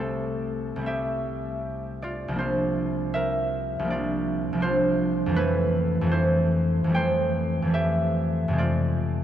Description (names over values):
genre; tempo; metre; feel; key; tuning
classical, solo harp piece; 64-82 BPM; 4/4; rubato; unclear; A4 = 443 Hz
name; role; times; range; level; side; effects
concert harp; solo; 0.0-9.2 s; C2 to G5; -23 LUFS; equal; none
room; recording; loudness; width
wet cathedral reverb, RT60 5.5 s; dark, warm production; -23 LUFS; side -10 dB against mid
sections
0.0-9.2 A section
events
none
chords
0.0 C6; 2.4 Bbadd9/C; 5.4 Fmaj9; 8.6 Fm6